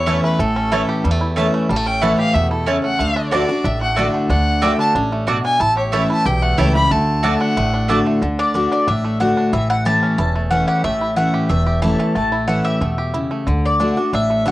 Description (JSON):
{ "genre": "bluegrass", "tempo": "184 BPM", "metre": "4/4", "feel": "straight", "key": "D major", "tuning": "A4 = 439 Hz", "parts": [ { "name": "bluegrass banjo", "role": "melody", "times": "0.0-14.5 s", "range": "D3 to G4", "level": "-25 LUFS", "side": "right 3 dB", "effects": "cassette tape" }, { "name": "rich fiddle", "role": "second line", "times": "0.0-7.9 s", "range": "A4 to B5", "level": "-20 LUFS", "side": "equal", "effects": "none" }, { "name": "picked steel-string acoustic guitar", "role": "accompaniment", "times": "0.0-14.5 s", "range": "E2 to F#4", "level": "-20 LUFS", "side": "left 1 dB", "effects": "none" }, { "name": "upright bass", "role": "bass", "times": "0.0-14.5 s", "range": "E1 to E2", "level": "-21 LUFS", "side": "equal", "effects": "none" }, { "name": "mandolin", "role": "stabs", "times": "0.1-8.0 s", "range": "A3 to A5", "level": "-19 LUFS", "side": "right 3 dB", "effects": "none" }, { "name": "mandolin", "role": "melody", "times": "8.4-14.5 s", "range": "D5 to A5", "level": "-20 LUFS", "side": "left 1 dB", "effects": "cassette tape" } ], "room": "moderate booth ambience, RT60 0.3 s", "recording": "home recording on cassette", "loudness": "-15 LUFS", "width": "side -16 dB against mid", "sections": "0.0-8.2 A section; 8.2-14.5 B section", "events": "fiddle solo 0.0-8.2", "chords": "0.0 A; 3.0 D; 5.6 A; 6.9 D; 9.5 A; 13.5 D" }